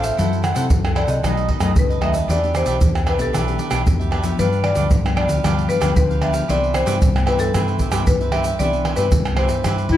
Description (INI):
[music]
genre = samba and choro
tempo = 114 BPM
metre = 4/4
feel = straight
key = C major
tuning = A4 = 439 Hz
[part]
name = marimba with medium mallets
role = melody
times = 0.0-10.0 s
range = A4 to F#5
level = -23 LUFS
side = left 1 dB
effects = none
[part]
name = cavaquinho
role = accompaniment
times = 0.0-10.0 s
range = D4 to F#5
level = -27 LUFS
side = right 6 dB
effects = none
[part]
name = nylon-string guitar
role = accompaniment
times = 0.0-10.0 s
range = F#2 to A4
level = -25 LUFS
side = left 6 dB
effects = none
[part]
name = hollow-body short-scale fingered electric bass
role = bass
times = 0.0-10.0 s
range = G1 to C3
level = -22 LUFS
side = equal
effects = none
[part]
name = tube shaker, pandeiro, surdo and tamborim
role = percussion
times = 0.0-10.0 s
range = none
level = -20 LUFS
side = right 1 dB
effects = none
[part]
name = warm clarinet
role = second line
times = 9.9-10.0 s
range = E4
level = -14 LUFS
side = left 6 dB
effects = none
[sound]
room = moderate large studio reverb, RT60 1.2 s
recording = none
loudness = -16 LUFS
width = side -12 dB against mid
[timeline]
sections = 0.0-10.0 A section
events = none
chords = 0.2 F#m7b5; 1.2 B7; 2.3 Em7; 4.4 G7; 6.5 Cmaj9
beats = | 0.18 0.71 1.23 1.76 | 2.29 2.81 3.34 3.86 | 4.39 4.92 5.44 5.97 | 6.49 7.02 7.54 8.07 | 8.60 9.12 9.65